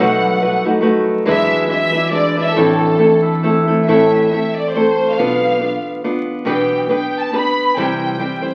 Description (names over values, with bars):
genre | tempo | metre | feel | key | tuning
mexican folk, mariachi | 139 BPM | 3/4 | swing 53% on 8ths | A minor | A4 = 440 Hz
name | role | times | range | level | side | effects
dark studio violin section | melody | 0.0-8.4 s | A4 to B5 | -22 LUFS | equal | none
nylon-string guitar | accompaniment | 0.0-8.5 s | A2 to C5 | -18 LUFS | equal | none
concert harp | arpeggios | 0.0-6.3 s | E3 to E5 | -24 LUFS | equal | none
upright bass | bass | 0.0-8.3 s | A1 to E2 | -36 LUFS | equal | none
room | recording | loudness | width
wet large studio reverb, RT60 0.9 s | very old 78 rpm record, vinyl crackle | -16 LUFS | mono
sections
0.0-3.9 A section; 3.9-8.5 A section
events
none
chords
0.0 B7; 1.3 E7; 2.6 Am; 5.2 Bdim; 6.5 Em7/B; 7.8 C